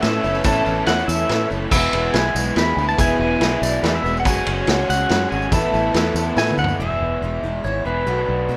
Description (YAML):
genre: folk rock and heartland rock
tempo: 142 BPM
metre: 3/4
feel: straight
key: unclear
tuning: A4 = 440 Hz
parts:
  - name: pedal steel guitar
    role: melody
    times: 0.0-8.6 s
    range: B4 to B5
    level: -26 LUFS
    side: equal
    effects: none
  - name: clear upright piano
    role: accompaniment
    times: 0.0-6.6 s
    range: G#4 to G#5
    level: -30 LUFS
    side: equal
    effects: none
  - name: picked twelve-string acoustic guitar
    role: accompaniment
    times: 0.0-8.6 s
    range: E2 to F#4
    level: -29 LUFS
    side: equal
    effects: none
  - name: rich studio string section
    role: sustained chords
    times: 0.0-6.8 s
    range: B3 to C#5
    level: -31 LUFS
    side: equal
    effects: none
  - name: raw garage guitar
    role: riff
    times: 0.0-8.6 s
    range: E2 to G#4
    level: -28 LUFS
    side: equal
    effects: overdrive
  - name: fingered electric bass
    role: bass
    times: 0.0-8.6 s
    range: E1 to B2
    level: -27 LUFS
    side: equal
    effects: none
  - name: vintage drum kit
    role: drums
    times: 0.0-6.7 s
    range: crash cymbal, kick drum, ride cymbal, snare drum, toms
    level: -25 LUFS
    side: equal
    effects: none
  - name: tambourine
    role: percussion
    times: 0.2-6.7 s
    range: none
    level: -36 LUFS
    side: equal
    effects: none
room: small room ambience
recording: rough home demo mix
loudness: -19 LUFS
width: mono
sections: 0.0-6.8 A section; 6.8-8.6 B section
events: drum fill 6.4-6.8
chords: 0.0 Aadd9; 1.7 E; 4.3 F#sus2; 5.5 Asus2; 6.8 E; 8.1 Bm7